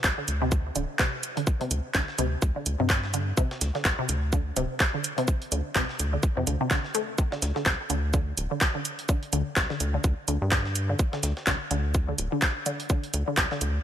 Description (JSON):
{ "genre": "minimal techno", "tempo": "126 BPM", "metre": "4/4", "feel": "swing 58% on 16ths", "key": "unclear", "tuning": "A4 = 438 Hz", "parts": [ { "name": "rubbery square bass", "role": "bass", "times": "0.0-13.8 s", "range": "D1 to G2", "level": "-28 LUFS", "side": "equal", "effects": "sidechain pumping" }, { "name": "booming analog drum machine", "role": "drums", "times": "0.0-13.7 s", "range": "handclaps, hi-hat", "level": "-29 LUFS", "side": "equal", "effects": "overdrive" }, { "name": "breakbeat sampler-style drum kit", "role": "drums", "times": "0.0-13.7 s", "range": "hi-hat, shaker, snare drum", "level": "-38 LUFS", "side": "right 2 dB", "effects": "high-pass filter on snare, sidechain pumping on perc, high-pass filter on perc, sidechain pumping on hats, high-pass filter on hats" }, { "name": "electronic kick drum", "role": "drums", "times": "0.0-13.5 s", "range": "none", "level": "-25 LUFS", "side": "equal", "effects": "overdrive" }, { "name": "resonant blip pluck", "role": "riff", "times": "0.2-13.6 s", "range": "C3 to A3", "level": "-31 LUFS", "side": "left 1 dB", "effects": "phaser, sidechain pumping, ping-pong delay" } ], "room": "light reverb", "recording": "none", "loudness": "-24 LUFS", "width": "side -10 dB against mid", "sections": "0.0-13.8 A section", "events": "none", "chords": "none" }